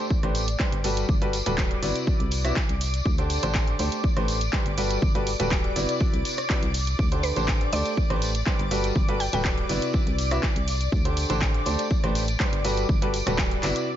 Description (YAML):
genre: piano house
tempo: 122 BPM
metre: 4/4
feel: straight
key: G major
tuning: A4 = 440 Hz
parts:
  - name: analog string pad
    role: sustained chords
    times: 0.0-14.0 s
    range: D5 to D6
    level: -33 LUFS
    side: left 2 dB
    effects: ensemble chorus, sidechain pumping
  - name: clear baby grand piano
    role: riff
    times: 0.0-13.9 s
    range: C3 to E5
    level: -28 LUFS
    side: right 1 dB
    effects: sidechain pumping, ping-pong delay
  - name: electronic kick drum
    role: drums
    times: 0.1-13.5 s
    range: none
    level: -25 LUFS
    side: equal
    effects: overdrive
  - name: tambourine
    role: percussion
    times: 0.1-13.8 s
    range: none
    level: -36 LUFS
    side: left 2 dB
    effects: none
  - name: solid FM bass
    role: bass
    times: 0.2-13.7 s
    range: D1 to D2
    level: -28 LUFS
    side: equal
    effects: sidechain pumping
  - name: house drum kit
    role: drums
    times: 0.2-13.9 s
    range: handclaps, hi-hat, rim click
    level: -32 LUFS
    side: right 1 dB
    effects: overdrive
  - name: mallet-like synth pluck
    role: melody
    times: 7.2-9.7 s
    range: B4 to G5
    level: -33 LUFS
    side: right 1 dB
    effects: chorus, ping-pong delay
  - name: swell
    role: sound effects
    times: 13.9-14.0 s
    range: none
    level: barely audible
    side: none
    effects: none
room: little or no reverb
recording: nothing above 7.5 kHz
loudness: -22 LUFS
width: side -11 dB against mid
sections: 0.0-14.0 A section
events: none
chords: 0.1 Am11; 0.8 Gmaj9; 2.1 Cmaj9#11; 3.1 D7sus4; 4.0 Am11; 4.8 Gmaj9; 6.0 Cmaj9#11; 7.0 D7sus4; 8.0 Am11; 8.7 Gmaj9; 9.9 Cmaj9#11; 10.9 D7sus4; 11.9 Am11; 12.6 Gmaj9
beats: 0.10 0.60 | 1.09 1.58 2.07 2.56 | 3.06 3.55 4.04 4.53 | 5.02 5.51 6.01 6.50 | 6.99 7.48 7.97 8.46 | 8.96 9.45 9.94 10.43 | 10.92 11.42 11.91 12.40 | 12.89 13.38 13.88